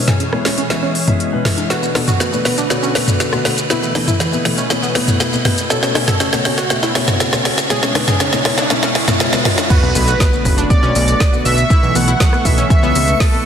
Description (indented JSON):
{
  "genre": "progressive house",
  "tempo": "120 BPM",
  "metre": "4/4",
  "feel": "straight",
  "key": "B dorian",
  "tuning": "A4 = 440 Hz",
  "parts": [
    { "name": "evolving wavetable pad", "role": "sustained chords", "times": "0.0-13.5 s", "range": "B2 to C#5", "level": "-24 LUFS", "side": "right 1 dB", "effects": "chorus, built-in reverb, sidechain pumping" },
    { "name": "analog pluck", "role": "arpeggios", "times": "0.0-13.5 s", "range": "E3 to A4", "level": "-23 LUFS", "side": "right 1 dB", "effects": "chorus, sidechain pumping, ping-pong delay" },
    { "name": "dark grand piano", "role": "stabs", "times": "0.0-13.4 s", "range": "B2 to E5", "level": "-21 LUFS", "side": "left 3 dB", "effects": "sidechain pumping, low-pass filter, ping-pong delay" },
    { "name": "deep house drum kit", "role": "drums", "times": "0.1-13.4 s", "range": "crash cymbal, hi-hat, rim click, shaker, snare drum", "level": "-18 LUFS", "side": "equal", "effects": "high-pass filter on snare, high-pass filter on hats, high-pass filter on perc, high-pass filter on cymbals" },
    { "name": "punchy analog drum machine", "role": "percussion", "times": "0.1-9.7 s", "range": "congas, rim click, toms", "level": "-19 LUFS", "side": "left 1 dB", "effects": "overdrive, sidechain pumping on perc, sidechain pumping on toms, sidechain pumping on snare" },
    { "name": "riser and sub drop", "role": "sound effects", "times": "4.8-11.7 s", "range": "none", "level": "-27 LUFS", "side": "right 1 dB", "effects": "none" },
    { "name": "wide unison lead", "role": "melody", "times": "9.7-13.5 s", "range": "A4 to F#5", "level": "-18 LUFS", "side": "right 1 dB", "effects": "sidechain pumping, ping-pong delay" },
    { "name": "electronic kick drum", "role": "drums", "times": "9.7-13.3 s", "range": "none", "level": "-13 LUFS", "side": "right 1 dB", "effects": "none" },
    { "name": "backwards swelling texture", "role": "texture", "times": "10.7-13.5 s", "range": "C#6", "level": "-28 LUFS", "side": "right 1 dB", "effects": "built-in reverb, sidechain pumping" },
    { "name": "fat analog bass", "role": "bass", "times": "9.8-13.1 s", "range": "F#1 to C#2", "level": "-17 LUFS", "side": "right 1 dB", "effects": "sidechain pumping" }
  ],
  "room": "moderate lush hall reverb, RT60 2.0 s",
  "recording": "dense, heavily limited modern master",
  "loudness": "-12 LUFS",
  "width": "side -8 dB against mid",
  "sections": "0.0-9.7 A section; 9.7-13.5 B section",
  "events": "build-up 0.0-9.7; drum fill 0.0-9.7; filter sweep on synth pluck 0.0-9.7; drop 9.7-13.5; impact 9.7-11.7",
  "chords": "0.0 C#m/B; 1.7 Bm7; 3.7 Esus4/B; 5.7 F#m/B; 7.7 C#m/B; 9.7 Bm7; 11.7 Esus4/B"
}